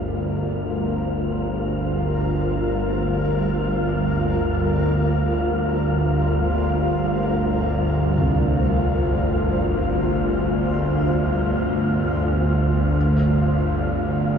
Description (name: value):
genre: dark ambient drone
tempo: free time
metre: none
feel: none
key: G minor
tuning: A4 = 440 Hz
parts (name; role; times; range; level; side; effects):
- granular cloud pad; sustained chords; 0.0-14.4 s; Gb3 to C5; -27 LUFS; equal; built-in reverb
- dark concert grand piano; arpeggios; 0.0-14.4 s; C2 to G4; -28 LUFS; equal; ping-pong delay
- bowed-like drone; drone; 0.0-14.4 s; G1 to D2; -21 LUFS; equal; built-in reverb
- wind-like tuned noise texture; texture; 0.0-14.4 s; F4 to F5; -28 LUFS; left 1 dB; built-in reverb
room: wet cathedral reverb, RT60 6.7 s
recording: dark, warm production, nothing above 7.6 kHz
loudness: -19 LUFS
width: side -7 dB against mid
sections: 0.0-14.4 A section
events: none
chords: 0.0 Gm7; 13.0 Ebmadd9 (rootless)